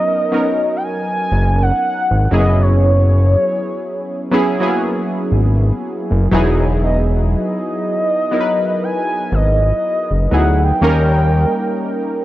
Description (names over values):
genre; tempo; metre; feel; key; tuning
contemporary R&B; 60 BPM; 4/4; swing 58% on 16ths; unclear; A4 = 440 Hz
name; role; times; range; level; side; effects
mellow horn-like synth lead; melody; 0.0-12.1 s; C#5 to G#5; -19 LUFS; equal; chorus, phaser, tape echo
warm analog keys; accompaniment; 0.0-12.2 s; F#3 to B4; -19 LUFS; equal; chorus
fat analog bass; bass; 1.3-11.5 s; E1 to D#2; -13 LUFS; equal; none
room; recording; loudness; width
digital ambience; dry, gritty hardware recording, cassette tape; -14 LUFS; side -15 dB against mid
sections
0.0-12.2 A section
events
none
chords
0.0 G#m11; 2.3 F#7sus4; 6.3 Emaj7; 10.8 D#7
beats
0.82 1.82 | 2.82 3.82 4.82 5.82 | 6.82 7.82 8.82 9.82 | 10.82 11.82